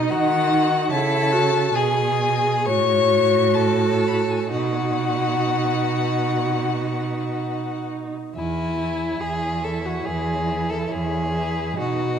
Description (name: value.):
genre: classical, slow romantic movement for string quartet.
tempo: 58-74 BPM.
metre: 4/4.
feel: rubato.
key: E major.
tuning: A4 = 440 Hz.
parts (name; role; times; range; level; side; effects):
warm violin; melody; 0.0-12.2 s; B4 to C#6; -26 LUFS; left 8 dB; none.
rich violin; second line; 0.0-12.2 s; D#4 to C#5; -24 LUFS; left 4 dB; none.
rich viola; accompaniment; 0.0-12.2 s; D#4 to G#4; -26 LUFS; right 4 dB; none.
rich cello; bass; 0.0-12.2 s; E2 to D#3; -25 LUFS; right 4 dB; none.
room: wet scoring stage reverb, RT60 1.8 s.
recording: dark, warm production.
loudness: -19 LUFS.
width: side -8 dB against mid.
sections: 0.0-8.3 A section; 8.3-12.2 B section.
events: none.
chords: 0.0 B (rootless); 0.9 C#m7; 2.7 F#m/A; 4.5 B; 8.3 E.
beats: 0.11 | 0.94 1.76 2.67 3.55 | 4.51 5.51 6.49 7.43 | 8.35 9.20 10.05 10.91 | 11.78.